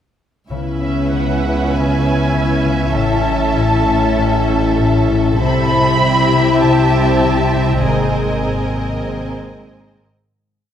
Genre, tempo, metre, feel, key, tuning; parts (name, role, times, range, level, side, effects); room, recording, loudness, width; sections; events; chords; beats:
cinematic, suspense film score; 98 BPM; 4/4; straight; A4 = 440 Hz
muted symphonic violin section; second line; 0.5-10.1 s; G4 to E5; -22 LUFS; equal
muted symphonic viola section; accompaniment; 0.5-10.1 s; C4 to G#4; -22 LUFS; right 1 dB
dark French horn section; sustained chords; 0.5-10.0 s; A#3 to E4; -21 LUFS; left 6 dB
concert harp; riff; 0.5-10.3 s; G#2 to C#4; -20 LUFS; left 4 dB
muted symphonic cello section; bass; 0.5-10.1 s; G#2 to C#3; -23 LUFS; right 2 dB
muted symphonic double bass section; bass; 0.5-10.1 s; G#1 to C#2; -24 LUFS; right 4 dB
warm sub bass; drone; 0.5-10.3 s; G#1 to C#2; -24 LUFS; right 1 dB
muted symphonic violin section; melody; 0.8-10.0 s; E5 to B5; -21 LUFS; right 1 dB
wet recital hall reverb, RT60 1.6 s; -13 LUFS; side -9 dB against mid
0.5-10.3 A section
fade-out 7.8-10.3
0.5 C#m7; 3.0 A; 5.4 C6; 7.8 G#add9
| 0.50 1.12 1.73 2.34 | 2.95 3.56 4.18 4.79 | 5.40 6.01 6.63 7.24 | 7.85 8.46 9.07 9.69